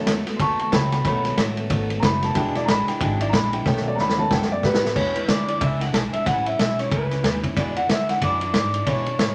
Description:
rockabilly; 184 BPM; 4/4; swing 60% on 8ths; E major; A4 = 438 Hz
dark upright piano; accompaniment; 0.0-5.0 s; D#3 to C#6; -26 LUFS; equal
picked steel-string acoustic guitar; accompaniment; 0.0-9.3 s; E2 to F#4; -32 LUFS; equal
upright bass; bass; 0.1-9.3 s; E1 to B2; -30 LUFS; equal
vintage drum kit; drums; 0.1-9.3 s; crash cymbal, kick drum, ride cymbal, snare drum; -25 LUFS; equal
electric guitar through a small old amp; melody; 5.0-9.3 s; B4 to G#5; -27 LUFS; equal
wet studio reverb, RT60 0.9 s; -22 LUFS; mono
0.0-5.0 A section; 5.0-9.3 B section
upright piano solo 0.0-5.0; drum fill 3.7-5.0
0.0 B7; 2.4 E7; 3.7 B7; 5.0 E7; 6.3 A7; 7.6 E7
0.07 0.40 0.72 | 1.05 1.38 1.70 2.03 | 2.35 2.68 3.01 3.33 | 3.66 3.98 4.31 4.63 | 4.96 5.29 5.61 5.94 | 6.26 6.59 6.91 7.24 | 7.56 7.89 8.21 8.54 | 8.86 9.19

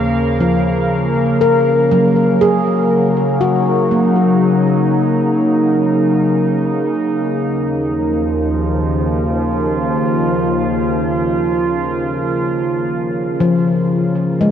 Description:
ambient; 60 BPM; 3/4; straight; Eb minor; A4 = 437 Hz
evolving wavetable pad; sustained chords; 0.0-14.5 s; Eb2 to F5; -14 LUFS; equal; chorus, built-in reverb
round analog bass; bass; 0.0-1.3 s; Eb2; -26 LUFS; equal
handpan; arpeggios; 0.4-7.9, 13.4-14.5 s; F3 to Bb4; -16 LUFS; left 2 dB; tape echo
wet huge ambient reverb, RT60 8.0 s; worn, warbling old tape, cassette tape, warbly pitch drift; -13 LUFS; side -9 dB against mid
0.0-1.4 A section; 1.4-14.5 B section
filter sweep on ambient pad 0.0-1.4, 1.4-14.5
0.0 Bbm/Eb; 1.4 Ebm7; 7.4 Bbm/Eb; 13.4 Eb7(no3) (rootless)
0.40 | 1.40 2.40 3.40 | 4.40 5.40 6.40 | 7.40 8.40 9.40 | 10.40 11.40 12.40 | 13.40 14.40

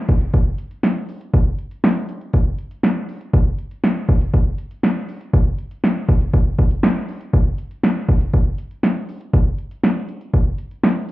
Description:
pop; 120 BPM; 4/4; straight
punchy analog drum machine; drums; 0.1-11.1 s; hi-hat, kick drum, snare drum; -16 LUFS; equal
moderate plate reverb, RT60 1.4 s, digital ambience; heard muffled through a wall, club reverb, EQ; -17 LUFS; side -17 dB against mid
0.0-11.1 A section
0.34 0.83 | 1.33 1.83 2.33 2.83 | 3.33 3.83 4.33 4.83 | 5.33 5.83 6.33 6.83 | 7.33 7.83 8.34 8.84 | 9.34 9.84 10.34 10.84

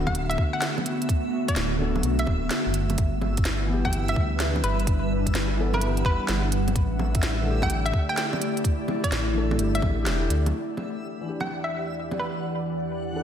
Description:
future garage; 127 BPM; 4/4; swing 67% on 16ths; E minor; A4 = 440 Hz
felt-muted upright piano; accompaniment; 0.0-13.2 s; D3 to A4; -33 LUFS; left 3 dB; sidechain pumping, diffuse ambient delay
ethereal airy pad; sustained chords; 0.0-13.2 s; E2 to F#5; -29 LUFS; equal; ensemble chorus, built-in reverb, sidechain pumping
dark detuned saw bass; bass; 0.0-10.5 s; D1 to D2; -26 LUFS; equal; sidechain pumping
backwards swelling texture; texture; 0.0-13.2 s; E5 to F#5; -38 LUFS; right 1 dB; built-in reverb, wide subtle chorus
hollow square pluck; melody; 0.1-12.4 s; B4 to G5; -31 LUFS; equal; chorus, analog delay
electronic kick drum; drums; 0.1-10.0 s; -25 LUFS; equal
organic electronic drum kit; drums; 0.1-12.2 s; bongos, hi-hat, snare drum; -31 LUFS; right 1 dB
moderate lush hall reverb, RT60 1.6 s; dreamy mix soaked in reverb; -23 LUFS; side -9 dB against mid
0.0-10.5 A section; 10.5-13.2 B section
0.0 D6; 3.0 G6; 6.8 A7sus4
0.15 0.62 | 1.09 1.56 2.04 2.51 | 2.98 3.45 3.92 4.40 | 4.87 5.34 5.82 6.29 | 6.76 7.23 7.71 8.18 | 8.65 9.12 9.60 10.07 | 10.54 11.01 11.48 11.96 | 12.43 12.90

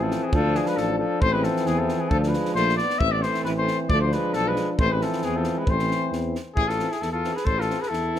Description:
balkan folk, Balkan brass band; 134 BPM; 2/4; swing 54% on 16ths; A harmonic minor; A4 = 440 Hz
mellow trumpet; melody; 0.0-8.2 s; G#4 to E5; -26 LUFS; left 4 dB
clear alto saxophone; second line; 0.0-8.2 s; E3 to A4; -32 LUFS; right 4 dB
clear euphonium; accompaniment; 0.0-8.2 s; C4 to D4; -30 LUFS; left 6 dB
warm euphonium; accompaniment; 0.0-8.2 s; E3 to F3; -30 LUFS; right 6 dB
mellow tuba; bass; 0.0-8.2 s; A1 to E2; -27 LUFS; equal
compact cocktail drum kit; percussion; 0.1-8.2 s; kick drum, snare drum; -28 LUFS; equal
light reverb; close, detailed microphones; -21 LUFS; side -10 dB against mid
0.0-6.6 A section; 6.6-8.2 B section
0.3 Dm; 1.2 Am; 2.1 Dm; 3.0 Am; 3.9 Dm; 4.8 Am
| 0.33 0.78 | 1.22 1.67 | 2.11 2.56 | 3.01 3.45 | 3.90 4.34 | 4.79 5.24 | 5.68 6.13 | 6.57 7.02 | 7.47 7.91

